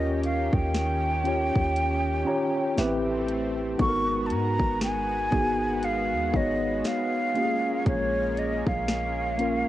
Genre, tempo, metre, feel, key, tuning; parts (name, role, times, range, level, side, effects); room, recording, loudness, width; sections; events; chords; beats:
contemporary R&B; 59 BPM; 4/4; swing 58% on 16ths; A4 = 439 Hz
breathy concert flute; melody; 0.0-9.7 s; C#5 to C#6; -28 LUFS; right 1 dB; cassette tape, tape echo
mellow tine electric piano; accompaniment; 0.0-9.7 s; A#3 to A#5; -28 LUFS; left 1 dB; medium stereo tremolo
lush unison pad; sustained chords; 0.0-9.7 s; D#3 to G4; -35 LUFS; right 1 dB; chorus, sidechain pumping
warm 808-style bass; bass; 0.0-9.6 s; G#1 to G#2; -31 LUFS; equal
trap drum kit; drums; 0.2-9.7 s; hi-hat, kick drum, snare drum; -27 LUFS; equal; vintage 12-bit sampler grit
light reverb, digital ambience; home recording on cassette; -23 LUFS; side -14 dB against mid
0.0-9.7 A section
tine electric piano fill 1.8-3.8
0.0 D#7; 2.8 Am7; 3.8 G#m7; 7.4 A#m7
0.74 1.76 2.78 | 3.79 4.81 5.83 6.84 | 7.86 8.88